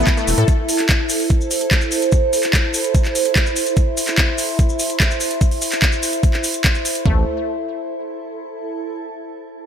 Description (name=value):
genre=psychedelic trance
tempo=146 BPM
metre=4/4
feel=straight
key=A minor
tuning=A4 = 441 Hz
part: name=overtone-sweeping drone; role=sustained chords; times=0.0-7.1 s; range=E4 to E5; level=-22 LUFS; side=right 2 dB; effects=chorus, built-in reverb, sidechain pumping
part: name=round analog bass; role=bass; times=0.0-0.4, 7.1-7.2 s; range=E1 to A2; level=-18 LUFS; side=equal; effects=none
part: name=granular cloud pad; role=texture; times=0.0-8.7 s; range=E4 to B5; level=-29 LUFS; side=right 2 dB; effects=built-in reverb, sidechain pumping
part: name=wide unison pluck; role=riff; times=0.1-0.4, 7.1-7.2 s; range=A3 to A4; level=-26 LUFS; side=left 1 dB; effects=auto-pan, sidechain pumping, ping-pong delay
part: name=garage drum kit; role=drums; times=0.1-7.2 s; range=kick drum, toms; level=-16 LUFS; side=equal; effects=overdrive, small room ambience
part: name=garage drum kit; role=drums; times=0.1-7.0 s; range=handclaps, hi-hat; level=-20 LUFS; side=right 1 dB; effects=overdrive, small room ambience
part: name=cabasa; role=percussion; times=0.1-7.0 s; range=none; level=-27 LUFS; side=left 4 dB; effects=none
room=light reverb, digital ambience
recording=none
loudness=-15 LUFS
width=side -8 dB against mid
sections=0.0-7.1 A section; 7.1-8.7 B section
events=fade-out on ambient pad 0.0-7.1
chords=0.0 A5